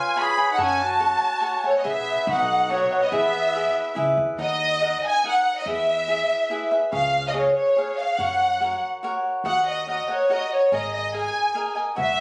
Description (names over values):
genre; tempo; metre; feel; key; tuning
mexican folk, mariachi; 142 BPM; 3/4; straight; E major; A4 = 440 Hz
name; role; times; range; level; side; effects
rich studio violin section; melody; 0.0-12.2 s; C#5 to B5; -24 LUFS; equal; none
warm trumpet; second line; 0.0-3.9 s; F#3 to G#4; -30 LUFS; equal; none
cavaquinho; accompaniment; 0.0-12.2 s; D#4 to G#5; -28 LUFS; equal; none
upright bass; bass; 0.6-12.2 s; E1 to F#2; -38 LUFS; equal; none
room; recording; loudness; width
light reverb; recorded on a phone in the room, studio reverb, compression; -23 LUFS; mono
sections
0.0-4.4 A section; 4.4-12.2 B section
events
none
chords
0.0 C#7; 0.6 F#madd9; 1.9 E/B; 2.3 B; 3.1 E; 4.4 D#m; 5.7 E; 6.9 C#7; 8.2 F#; 9.5 D#m; 10.7 G#sus2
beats
0.16 | 0.58 1.01 1.43 | 1.85 2.27 2.69 | 3.11 3.54 3.96 | 4.39 4.81 5.24 | 5.66 6.08 6.50 | 6.92 7.34 7.76 | 8.19 8.61 9.03 | 9.45 9.88 10.30 | 10.72 11.14 11.56 | 11.98